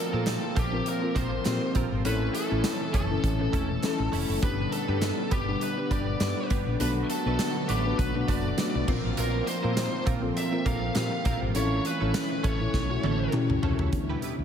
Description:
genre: 1980s-style pop.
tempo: 101 BPM.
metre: 4/4.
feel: swing 55% on 16ths.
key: unclear.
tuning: A4 = 440 Hz.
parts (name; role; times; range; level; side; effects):
bluesy overdriven lead guitar; melody; 0.0-13.3 s; G4 to F5; -33 LUFS; equal; distortion, ping-pong delay.
mellow FM electric piano; accompaniment; 0.0-14.4 s; A3 to D5; -32 LUFS; left 4 dB; chorus.
brassy analog pad; sustained chords; 0.0-14.4 s; C3 to F#4; -33 LUFS; right 2 dB; chorus.
direct-recorded clean electric guitar; riff; 0.1-14.4 s; F3 to B4; -38 LUFS; right 5 dB; analog chorus, ping-pong delay.
woody fretless electric bass; bass; 0.1-14.4 s; E1 to Bb2; -30 LUFS; right 1 dB; none.
modern studio drum kit; drums; 0.3-14.4 s; crash cymbal, hi-hat, kick drum, snare drum, tambourine, toms; -30 LUFS; equal; none.
group handclap; percussion; 0.3-13.5 s; none; barely audible; none; none.
marimba with soft mallets; second line; 13.0-13.9 s; E4 to A4; -41 LUFS; right 6 dB; none.
room: wet cathedral reverb, RT60 6.0 s.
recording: dreamy mix soaked in reverb.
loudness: -25 LUFS.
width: side -8 dB against mid.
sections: 0.0-13.9 A section.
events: drum fill 12.7-13.9.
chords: 0.0 Bbsus2; 2.0 A; 4.4 G; 6.8 Bm7; 8.9 Bbsus2; 11.6 A; 13.9 Cmaj7.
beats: 0.27 0.86 1.46 | 2.05 2.64 3.24 3.83 | 4.43 5.02 5.61 6.21 | 6.80 7.40 7.99 8.58 | 9.18 9.77 10.37 10.96 | 11.55 12.15 12.74 13.34 | 13.93.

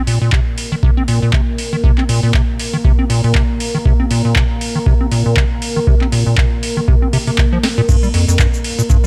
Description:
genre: acid house.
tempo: 119 BPM.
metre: 4/4.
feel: swing 56% on 16ths.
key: unclear.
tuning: A4 = 440 Hz.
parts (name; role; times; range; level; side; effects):
dark analog pad; sustained chords; 0.1-9.1 s; Bb3 to Bb4; -25 LUFS; equal; chorus, sidechain pumping.
acid bass, square; riff; 0.0-9.1 s; F2 to C4; -19 LUFS; equal; analog chorus, sidechain pumping.
booming analog drum machine; drums; 0.1-9.1 s; cabasa, crash cymbal, handclaps, hi-hat, snare drum; -24 LUFS; equal; none.
electronic kick drum; drums; 0.3-9.0 s; none; -17 LUFS; equal; none.
room: digital ambience.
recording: none.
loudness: -15 LUFS.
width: mono.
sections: 0.0-7.9 A section; 7.9-9.1 B section.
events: drum fill 7.6; drop 7.9-9.1.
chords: 0.0 C7(no3); 7.9 Gm7.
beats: 0.33 0.83 1.33 | 1.84 2.34 2.85 3.35 | 3.85 4.36 4.86 5.37 | 5.87 6.38 6.88 7.38 | 7.89 8.39 8.90.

